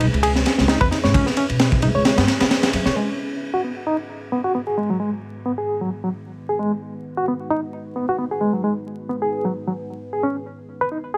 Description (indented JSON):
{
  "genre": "breakbeat, breaks",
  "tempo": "132 BPM",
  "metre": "4/4",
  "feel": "swing 55% on 16ths",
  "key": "G# minor",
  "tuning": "A4 = 441 Hz",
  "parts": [
    { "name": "deep dark ambient pad", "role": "sustained chords", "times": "0.0-11.2 s", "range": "C#3 to F#5", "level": "-34 LUFS", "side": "equal", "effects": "chorus, built-in reverb, vintage 12-bit sampler grit, sidechain pumping" },
    { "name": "barky reed electric piano", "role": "riff", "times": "0.0-11.2 s", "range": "F#3 to C#5", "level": "-24 LUFS", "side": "equal", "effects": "overdrive, fast tremolo, low-pass filter, tape echo" },
    { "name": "upright bass", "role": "bass", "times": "0.0-2.9 s", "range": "C#2 to C#3", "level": "-24 LUFS", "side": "equal", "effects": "none" },
    { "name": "crunchy breakbeat drum kit", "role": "drums", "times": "0.0-3.0 s", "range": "kick drum, ride cymbal, snare drum", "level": "-22 LUFS", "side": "equal", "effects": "none" }
  ],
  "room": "moderate studio ambience, RT60 0.5 s",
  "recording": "vinyl crackle",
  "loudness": "-22 LUFS",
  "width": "mono",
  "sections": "0.0-3.0 A section; 3.0-11.2 B section",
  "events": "filter sweep on reed electric piano 0.0-3.0; filter sweep on ambient pad 3.0-11.2",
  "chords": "0.0 C#m7; 3.0 G#m7; 10.2 C#m7"
}